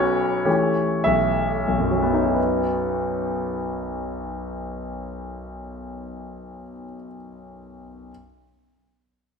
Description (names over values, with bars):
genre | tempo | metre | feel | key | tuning
classical, impressionist solo piano | 42-56 BPM | 3/4 | rubato | unclear | A4 = 441 Hz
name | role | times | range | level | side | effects
clear concert grand piano | solo | 0.0-8.1 s | B1 to E5 | -22 LUFS | left 1 dB | none
room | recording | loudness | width
moderate recital hall reverb, RT60 1.6 s | minimal, uncompressed stereo recording | -21 LUFS | side -5 dB against mid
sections
0.0-2.4 A section; 2.4-5.9 B section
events
slowing down 0.0-2.4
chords
0.5 A9; 2.4 B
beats
1.05 | 2.36 3.54 4.76